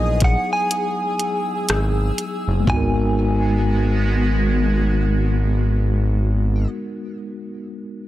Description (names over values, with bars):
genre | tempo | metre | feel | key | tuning
contemporary R&B | 61 BPM | 4/4 | swing 58% on 16ths | G# minor | A4 = 437 Hz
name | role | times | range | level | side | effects
direct-recorded clean electric guitar | melody | 0.0-6.7 s | D#5 to G#5 | -25 LUFS | equal | tape echo
mellow tine electric piano | accompaniment | 0.0-8.1 s | F#3 to A#4 | -25 LUFS | equal | medium stereo tremolo
granular cloud pad | sustained chords | 0.0-6.7 s | G#3 to E6 | -27 LUFS | equal | built-in reverb, sidechain pumping
fat analog bass | bass | 0.0-6.7 s | F#1 to A#1 | -19 LUFS | equal | none
smooth R&B drum kit | drums | 0.2-2.9 s | hi-hat, kick drum, rim click, toms | -20 LUFS | equal | none
room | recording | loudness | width
digital ambience | none | -17 LUFS | side -14 dB against mid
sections
0.0-2.7 A section; 2.7-6.6 B section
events
break 0.7-2.7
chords
0.0 Emaj7; 2.7 G#m7